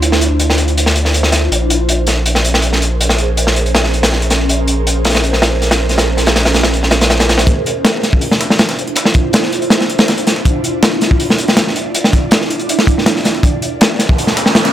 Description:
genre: drum and bass, jungle.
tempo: 161 BPM.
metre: 4/4.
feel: straight.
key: unclear.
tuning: A4 = 440 Hz.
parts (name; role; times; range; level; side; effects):
ethereal airy pad; sustained chords; 0.0-14.7 s; Db4 to D5; -19 LUFS; right 2 dB; ensemble chorus, built-in reverb, phaser, vintage 12-bit sampler grit.
saturated sub bass; bass; 0.0-14.7 s; F1 to D2; -17 LUFS; equal; tube saturation, high-pass filter.
crunchy breakbeat drum kit; drums; 0.0-14.7 s; hi-hat, kick drum, snare drum; -12 LUFS; equal; high-pass filter on kick, high-pass filter on hats, high-pass filter on snare, high-pass filter on room.
breakbeat sampler-style drum kit; drums; 7.5-14.7 s; hi-hat, snare drum; -24 LUFS; equal; high-pass filter on hats, high-pass filter on snare, high-pass filter on room.
riser; sound effects; 13.7-14.7 s; none; -21 LUFS; right 4 dB; none.
room: light reverb, small room ambience.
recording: none.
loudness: -10 LUFS.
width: side -12 dB against mid.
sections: 0.0-7.5 A section; 7.5-14.7 B section.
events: build-up 7.5-14.7; riser 13.7-14.7.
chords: 0.0 Dm9; 1.5 Bbm9; 7.5 Dm9; 13.4 Bbm9.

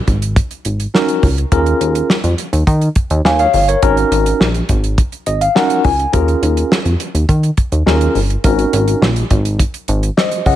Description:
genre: early-eighties boogie funk.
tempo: 104 BPM.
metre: 4/4.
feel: straight.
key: unclear.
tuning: A4 = 438 Hz.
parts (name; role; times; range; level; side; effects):
chorused synth bass; bass; 0.1-10.6 s; G1 to Eb3; -15 LUFS; equal; none.
damped 70s drum kit; drums; 0.1-10.6 s; hi-hat, kick drum, snare drum; -16 LUFS; equal; gated reverb.
tine electric piano; accompaniment; 0.9-10.6 s; Db4 to Ab5; -15 LUFS; left 1 dB; medium stereo tremolo.
room: studio ambience.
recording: none.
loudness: -12 LUFS.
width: side -12 dB against mid.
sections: 0.0-10.6 A section.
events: tine electric piano fill 5.0-6.1.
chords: 0.0 Ab9sus4; 1.5 Eb9sus4; 3.8 Ab9sus4; 6.1 Eb9sus4; 8.4 Ab9sus4.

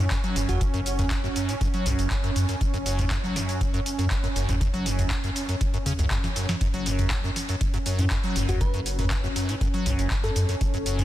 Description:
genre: acid house.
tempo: 120 BPM.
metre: 4/4.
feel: straight.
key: F# minor pentatonic.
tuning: A4 = 440 Hz.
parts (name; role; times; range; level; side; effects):
warm analog pad; sustained chords; 0.0-11.0 s; C#4; -33 LUFS; right 2 dB; chorus, sidechain pumping.
liquid acid bass; riff; 0.0-11.0 s; F#2 to F#3; -29 LUFS; equal; chorus, cassette tape, digital delay.
round analog bass; bass; 0.0-11.0 s; F#1 to F#2; -27 LUFS; equal; sidechain pumping.
booming analog drum machine; drums; 0.0-11.0 s; cabasa, handclaps, hi-hat, snare drum, toms; -30 LUFS; equal; none.
electronic kick drum; drums; 0.1-10.7 s; none; -28 LUFS; equal; none.
bell-like FM electric piano; melody; 0.5-0.6, 8.5-10.9 s; F#4 to B4; -35 LUFS; left 1 dB; chorus, tremolo, digital delay.
room: light reverb.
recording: dense, heavily limited modern master.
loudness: -23 LUFS.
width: side -14 dB against mid.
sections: 0.0-11.0 A section.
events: none.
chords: 0.0 F#5.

